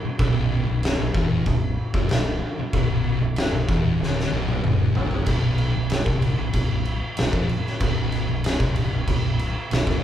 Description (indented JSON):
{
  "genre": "stoner and doom metal",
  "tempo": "94 BPM",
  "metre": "4/4",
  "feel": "straight",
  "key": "unclear",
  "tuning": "A4 = 438 Hz",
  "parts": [
    { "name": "thick fuzz guitar", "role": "riff", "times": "0.0-10.0 s", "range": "B1 to F#2", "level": "-28 LUFS", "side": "left 5 dB", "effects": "distortion" },
    { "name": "thick fuzz guitar", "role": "riff", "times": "0.0-10.0 s", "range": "B1 to F#2", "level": "-27 LUFS", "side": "right 5 dB", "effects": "distortion" },
    { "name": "growling fingered electric bass", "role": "bass", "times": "0.0-10.0 s", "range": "B0 to F#1", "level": "-29 LUFS", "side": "equal", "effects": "overdrive" },
    { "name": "oversized low-tuned drum kit", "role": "drums", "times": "0.2-10.0 s", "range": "crash cymbal, kick drum, snare drum, toms", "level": "-23 LUFS", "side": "equal", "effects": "none" }
  ],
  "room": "light reverb",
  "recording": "band playing live in one room",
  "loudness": "-20 LUFS",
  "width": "side -10 dB against mid",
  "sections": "0.0-5.3 A section; 5.3-10.0 B section",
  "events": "drum fill 4.0-5.3",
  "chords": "0.0 Bm; 5.3 F5",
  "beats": "| 0.20 0.83 1.46 2.10 | 2.73 3.37 4.00 4.64 | 5.27 5.91 6.54 7.18 | 7.81 8.45 9.08 9.71"
}